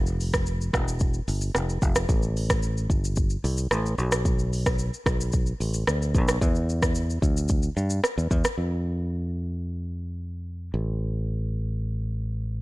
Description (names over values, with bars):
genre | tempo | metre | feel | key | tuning
afrobeats | 111 BPM | 4/4 | straight | unclear | A4 = 439 Hz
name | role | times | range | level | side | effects
fingered electric bass | bass | 0.0-12.6 s | E1 to G2 | -26 LUFS | equal | none
afro-pop drum kit | drums | 0.1-8.6 s | hi-hat, kick drum, rim click, shaker | -25 LUFS | equal | vintage 12-bit sampler grit
room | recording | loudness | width
digital ambience | none | -23 LUFS | side -20 dB against mid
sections
0.0-8.6 A section; 8.6-12.6 B section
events
none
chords
none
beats
0.47 1.01 1.55 | 2.09 2.63 3.17 3.71 | 4.25 4.79 5.33 5.87 | 6.41 6.96 7.50 8.04 | 8.58 9.12 9.66 10.20 | 10.74 11.28 11.82 12.36